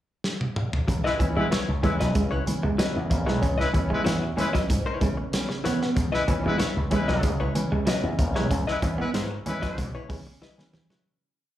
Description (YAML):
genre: funk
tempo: 94 BPM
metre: 4/4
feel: straight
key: C# minor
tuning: A4 = 438 Hz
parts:
  - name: warm soul drum kit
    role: drums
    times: 0.2-11.0 s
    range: hi-hat, kick drum, snare drum, toms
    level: -28 LUFS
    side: equal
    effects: none
  - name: hollow-body jazz guitar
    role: accompaniment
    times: 0.9-11.0 s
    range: E4 to D#5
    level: -31 LUFS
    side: left 5 dB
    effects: slapback echo
  - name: dark upright piano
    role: stabs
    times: 0.9-11.0 s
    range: C#3 to C#4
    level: -31 LUFS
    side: equal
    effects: tape echo, slapback echo
  - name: slap bass with an envelope filter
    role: bass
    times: 0.9-10.2 s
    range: A#1 to C#3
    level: -28 LUFS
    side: equal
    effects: none
  - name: congas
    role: percussion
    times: 0.9-10.9 s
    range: none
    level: -34 LUFS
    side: right 2 dB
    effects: none
  - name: clear horn section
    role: second line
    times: 1.0-9.9 s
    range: G#3 to B4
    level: -29 LUFS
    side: left 2 dB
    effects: slapback echo
  - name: electric guitar through a small old amp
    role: riff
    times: 1.1-11.0 s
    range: E3 to C#4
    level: -30 LUFS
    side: right 3 dB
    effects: harmonic tremolo, slapback echo
room: light reverb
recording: live gig heard through the venue's PA, club reverb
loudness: -23 LUFS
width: side -13 dB against mid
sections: 0.0-0.9 pickup bar; 0.9-11.1 groove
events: drum fill 0.2-0.9, 10.4-11.1; fade-out 8.5-11.1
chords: 0.0 N.C.; 0.9 C#m7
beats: 0.24 | 0.88 1.51 2.15 2.79 | 3.42 4.06 4.69 5.33 | 5.97 6.60 7.24 7.87 | 8.51 9.15 9.78 10.42